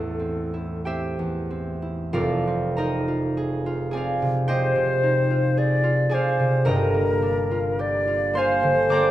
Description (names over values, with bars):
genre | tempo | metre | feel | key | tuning
classical, impressionist duo for flute and harp | 43-57 BPM | 4/4 | rubato | F dorian | A4 = 441 Hz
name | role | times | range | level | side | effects
silver concert flute | melody | 0.0-9.1 s | A4 to D5 | -23 LUFS | left 1 dB | none
concert harp | accompaniment | 0.0-9.1 s | F1 to D6 | -22 LUFS | right 1 dB | none
room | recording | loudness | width
wet recital hall reverb, RT60 1.6 s | dark, warm production | -20 LUFS | side -13 dB against mid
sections
0.0-2.1 A section; 2.1-9.1 B section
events
none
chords
0.0 Am; 2.1 Fm7; 6.7 Gm7